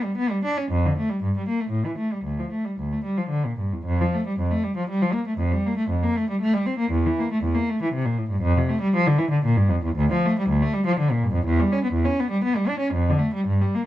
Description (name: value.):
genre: classical, baroque-style suite movement for unaccompanied cello.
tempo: 118 BPM.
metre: 3/4.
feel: rubato.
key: D minor, F major from 3.8 s, D minor from 9.9 s.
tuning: A4 = 440 Hz.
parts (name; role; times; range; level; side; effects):
rich cello; solo; 0.0-13.9 s; D2 to D4; -21 LUFS; equal; none.
room: light reverb.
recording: dark, warm production.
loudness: -21 LUFS.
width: side -14 dB against mid.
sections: 0.0-3.8 A section; 3.8-13.9 A section.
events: none.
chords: none.